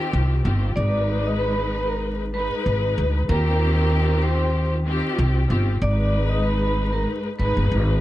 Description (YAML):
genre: hip hop, boom-bap hip-hop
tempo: 95 BPM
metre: 4/4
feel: swing 54% on 16ths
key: unclear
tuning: A4 = 440 Hz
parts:
  - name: warm studio string section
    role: accompaniment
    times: 0.0-8.0 s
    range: Ab2 to Cb5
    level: -25 LUFS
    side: left 1 dB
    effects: high-pass filter, low-pass filter
  - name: upright bass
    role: bass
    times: 0.1-8.0 s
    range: G1 to Eb2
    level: -21 LUFS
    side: equal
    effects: none
  - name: vibraphone with medium hard mallets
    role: melody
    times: 0.8-7.5 s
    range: Bb4 to Eb6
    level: -28 LUFS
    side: right 1 dB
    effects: high-pass filter, low-pass filter
room: small room ambience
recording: vinyl crackle, nothing above 10.7 kHz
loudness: -19 LUFS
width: side -15 dB against mid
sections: 0.0-8.0 A section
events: none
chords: 0.0 Eb69; 0.8 Abm; 3.3 Eb69; 5.8 Abm